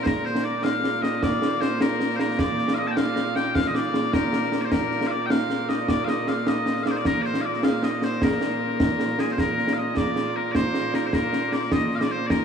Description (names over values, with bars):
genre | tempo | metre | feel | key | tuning
scottish traditional, Scottish pipe music | 103 BPM (dotted quarters) | 6/8 | straight | Bb major | A4 = 440 Hz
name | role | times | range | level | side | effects
loud bright bagpipes | melody | 0.0-12.4 s | Bb2 to A5 | -24 LUFS | equal | none
concert snare drum and concert bass drum | drums | 0.1-12.4 s | none | -24 LUFS | equal | none
room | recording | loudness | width
wet huge ambient reverb, RT60 8.9 s | heard from further back in the room, small room ambience | -21 LUFS | side -7 dB against mid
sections
0.1-9.4 A section; 9.4-12.4 B section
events
none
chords
none